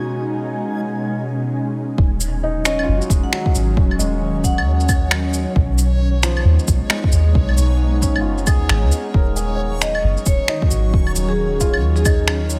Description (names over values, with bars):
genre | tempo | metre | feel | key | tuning
future garage | 134 BPM | 4/4 | swing 60% on 16ths | Eb minor | A4 = 440 Hz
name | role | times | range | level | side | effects
felt-muted upright piano | accompaniment | 0.0-12.6 s | F3 to Db5 | -30 LUFS | equal | sidechain pumping, digital delay
ethereal airy pad | sustained chords | 0.0-12.6 s | B2 to D#4 | -27 LUFS | equal | ensemble chorus, built-in reverb, sidechain pumping
backwards swelling texture | texture | 0.0-12.6 s | Db5 to Ab5 | -36 LUFS | equal | built-in reverb
soft 808-style bass | bass | 2.0-12.6 s | Eb1 to Eb2 | -20 LUFS | equal | tube saturation, sidechain pumping
electronic kick drum | drums | 2.0-12.2 s | none | -20 LUFS | equal | studio reverb
electronic cabasa, shaker, finger snaps and claves | drums | 2.2-12.6 s | none | -24 LUFS | equal | low-pass filter on perc, studio reverb, low-pass filter on snare
vibraphone with hard mallets | melody | 2.7-5.1, 9.8-12.3 s | Ab4 to Gb5 | -28 LUFS | equal | digital delay
room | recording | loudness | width
light reverb | none | -18 LUFS | mono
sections
0.0-2.0 A section; 2.0-12.6 B section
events
none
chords
0.0 B69; 2.0 Ebm7; 5.6 B69; 9.1 Ebm7